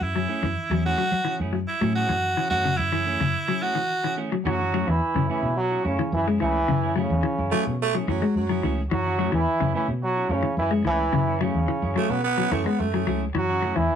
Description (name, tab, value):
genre	afrobeat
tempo	108 BPM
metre	4/4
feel	straight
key	F# minor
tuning	A4 = 440 Hz
part	raspy tenor saxophone	melody	0.0-4.2 s	E4 to F#4	-24 LUFS	right 2 dB	none
part	fingered electric bass	bass	0.0-13.9 s	C#2 to F#3	-27 LUFS	equal	none
part	clean electric guitar	stabs	0.1-13.8 s	A3 to G#4	-33 LUFS	right 3 dB	none
part	clean electric guitar	arpeggios	0.2-14.0 s	C#3 to G#3	-27 LUFS	left 5 dB	none
part	clear trombone	melody	4.5-14.0 s	C#3 to F#3	-26 LUFS	right 2 dB	none
part	breathy trumpet	second line	4.5-14.0 s	C#4 to F#4	-31 LUFS	right 3 dB	none
part	breathy baritone saxophone	second line	7.5-13.2 s	F#3 to B3	-26 LUFS	right 6 dB	none
room	moderate studio reverb, RT60 0.6 s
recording	rough rehearsal-room recording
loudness	-21 LUFS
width	side -8 dB against mid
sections	0.0-4.5 A section; 4.5-14.0 B section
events	tenor saxophone solo 0.0-4.5; break 3.3-4.5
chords	0.0 F#m9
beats	| 0.00 0.56 1.12 1.67 | 2.23 2.79 3.34 3.90 | 4.46 5.01 5.57 6.12 | 6.68 7.24 7.79 8.35 | 8.90 9.46 10.01 10.57 | 11.12 11.68 12.23 12.79 | 13.35 13.90